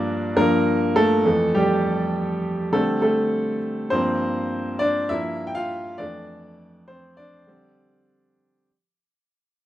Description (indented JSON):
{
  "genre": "soul",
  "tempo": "101 BPM",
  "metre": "4/4",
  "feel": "swing 54% on 16ths",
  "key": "G dorian",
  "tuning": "A4 = 440 Hz",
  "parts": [
    { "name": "clear grand piano", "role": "solo", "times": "0.0-8.7 s", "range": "F2 to G5", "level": "-20 LUFS", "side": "equal", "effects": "none" }
  ],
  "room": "wet small room reverb, RT60 0.5 s",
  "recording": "rough home demo mix",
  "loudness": "-19 LUFS",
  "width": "side -13 dB against mid",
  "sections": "0.0-8.7 A section",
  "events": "fade-out 0.0-8.7; grand piano solo 0.0-8.7",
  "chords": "0.4 Gm9; 1.3 Fmaj7; 2.7 D7sus4; 3.9 Gm7; 6.0 Fmaj7; 7.5 D7sus4"
}